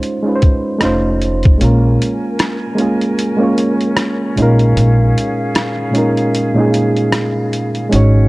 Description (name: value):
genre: lo-fi hip hop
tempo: 76 BPM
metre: 4/4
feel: swing 57% on 16ths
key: unclear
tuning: A4 = 440 Hz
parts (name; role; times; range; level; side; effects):
- reed electric piano; accompaniment; 0.0-8.3 s; Bb2 to Db5; -15 LUFS; right 1 dB; cassette tape, low-pass filter
- boom bap sampler-style drum kit; drums; 0.0-8.1 s; hi-hat, kick drum, rim click; -16 LUFS; equal; none
- upright bass; bass; 0.8-8.3 s; F1 to Bb1; -12 LUFS; equal; none
- flute section; sustained chords; 1.6-8.3 s; Db4 to Ab5; -25 LUFS; left 1 dB; low-pass filter
room: small room ambience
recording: cassette tape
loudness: -12 LUFS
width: side -21 dB against mid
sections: 0.0-1.6 A section; 1.6-8.3 B section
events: filter sweep on reed electric piano 0.0-1.6; kick muted 1.6-8.3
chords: 0.0 Dbmaj9; 0.8 F7b13; 1.6 Bbm7; 4.4 Eb9sus4/Bb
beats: 0.02 0.81 | 1.60 2.39 3.18 3.97 | 4.76 5.54 6.33 7.12 | 7.91